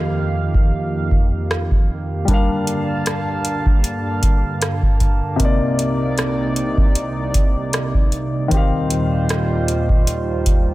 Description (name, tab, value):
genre	contemporary R&B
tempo	77 BPM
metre	4/4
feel	swing 54% on 16ths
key	G minor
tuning	A4 = 440 Hz
part	warm grand piano	accompaniment	0.0-10.7 s	C3 to F5	-24 LUFS	left 3 dB	none
part	chorused pulse-width pad	sustained chords	0.0-10.7 s	C2 to A5	-21 LUFS	right 1 dB	sidechain pumping
part	booming analog drum machine	drums	0.5-10.7 s	hi-hat, kick drum, rim click	-16 LUFS	equal	none
room	little or no reverb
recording	none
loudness	-16 LUFS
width	side -17 dB against mid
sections	0.0-10.7 A section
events	none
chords	0.0 F7sus4; 2.3 Gm7; 5.4 Cm9; 8.5 Eb69